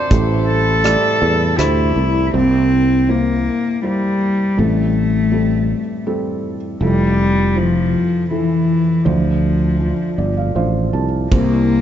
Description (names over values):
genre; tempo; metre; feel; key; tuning
acoustic folk-pop ballad; 80 BPM; 3/4; straight; unclear; A4 = 439 Hz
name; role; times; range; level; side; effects
picked swing-style acoustic guitar; melody; 0.0-1.5 s; C5; -26 LUFS; right 1 dB; none
felt-muted upright piano; accompaniment; 0.0-11.8 s; F1 to A5; -22 LUFS; right 3 dB; none
warm chamber string section; sustained chords; 0.0-2.3, 11.3-11.8 s; C3 to Bb5; -29 LUFS; equal; none
sustaining fretless electric bass; bass; 0.1-11.8 s; F1 to E2; -18 LUFS; right 1 dB; none
natural country drum kit; drums; 0.1-1.8, 11.3-11.5 s; hi-hat, kick drum, ride cymbal, rim click; -18 LUFS; right 1 dB; none
warm cello; second line; 0.5-11.8 s; E3 to A4; -17 LUFS; left 2 dB; none
room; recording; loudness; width
light reverb; dark, warm production, nothing above 7.7 kHz; -14 LUFS; side -10 dB against mid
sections
0.0-2.3 A section; 2.3-11.8 B section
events
cello solo 2.3-11.8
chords
0.1 Am7; 2.3 C7; 4.6 Am7; 6.8 Fmaj7; 9.1 Dm7; 11.3 C7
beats
| 0.10 0.84 1.58 | 2.33 3.09 3.84 | 4.58 5.33 6.08 | 6.82 7.57 8.31 | 9.06 9.80 10.56 | 11.31